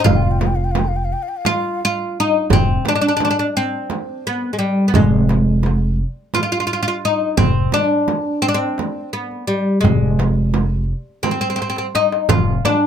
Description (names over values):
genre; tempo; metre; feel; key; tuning
Turkish makam ensemble; 171 BPM (eighths); 7/8; straight; F makam nikriz; A4 = 440 Hz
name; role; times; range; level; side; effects
oud; melody; 0.0-12.9 s; G3 to F4; -18 LUFS; left 1 dB; none
breathy mellow ney; second line; 0.0-1.8 s; F5 to G5; -25 LUFS; left 5 dB; none
darbuka; percussion; 0.0-12.8 s; none; -22 LUFS; left 4 dB; none
upright bass; bass; 0.1-12.6 s; F1; -18 LUFS; equal; none
frame drum; percussion; 0.1-12.8 s; none; -21 LUFS; right 5 dB; none
room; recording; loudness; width
light reverb; close, detailed microphones; -16 LUFS; side -8 dB against mid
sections
0.0-2.5 A section; 2.5-12.9 B section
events
drum fill 11.6-12.3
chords
none